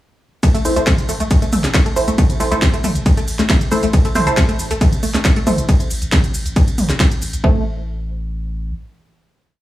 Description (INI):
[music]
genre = driving peak-time techno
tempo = 137 BPM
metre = 4/4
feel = straight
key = A minor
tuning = A4 = 439 Hz
[part]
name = tight sequenced synth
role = riff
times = 0.4-7.6 s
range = A3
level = -23 LUFS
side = equal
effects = chorus, phaser, tube saturation, sidechain pumping, analog delay
[part]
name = electronic kick drum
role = drums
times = 0.4-7.5 s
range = none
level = -15 LUFS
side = equal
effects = none
[part]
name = techno drum kit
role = drums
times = 0.4-7.4 s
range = hi-hat, ride cymbal, shaker, snare drum, toms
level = -20 LUFS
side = equal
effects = none
[part]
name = saturated sub bass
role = bass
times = 0.6-8.7 s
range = A1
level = -24 LUFS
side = equal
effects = sidechain pumping, low-pass filter
[part]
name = filtered dub chord stab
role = stabs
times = 0.7-9.6 s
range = E4 to C5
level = -21 LUFS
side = right 1 dB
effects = phaser, cassette tape, sidechain pumping, analog delay
[sound]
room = digital ambience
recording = dry, gritty hardware recording, small room ambience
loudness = -14 LUFS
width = side -15 dB against mid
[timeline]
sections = 0.4-7.4 drop; 7.4-9.6 final chord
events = drop 0.4-7.4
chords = 0.4 Am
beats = | 0.43 0.87 1.31 1.75 | 2.18 2.62 3.06 3.50 | 3.94 4.37 4.81 5.25 | 5.69 6.12 6.56 7.00 | 7.44 7.88 8.31 8.75 | 9.19